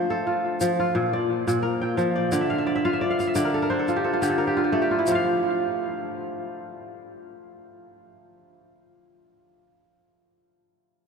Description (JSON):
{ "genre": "west african traditional, West African string and xylophone music", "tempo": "88 BPM", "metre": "4/4", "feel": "swing 54% on 16ths", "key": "unclear", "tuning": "A4 = 441 Hz", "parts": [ { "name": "kora", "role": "arpeggios", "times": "0.0-9.3 s", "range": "Bb2 to G5", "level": "-22 LUFS", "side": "equal", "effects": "analog delay" }, { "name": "tube shaker", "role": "percussion", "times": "0.6-5.4 s", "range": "none", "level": "-38 LUFS", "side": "left 7 dB", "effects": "none" } ], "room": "wet cathedral reverb, RT60 5.2 s", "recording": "dreamy mix soaked in reverb", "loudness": "-22 LUFS", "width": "side -5 dB against mid", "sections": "0.0-5.1 A section; 5.1-7.8 B section", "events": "kora fill 2.3-5.1", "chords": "0.0 F; 0.9 Bb; 2.3 Dm; 5.1 N.C." }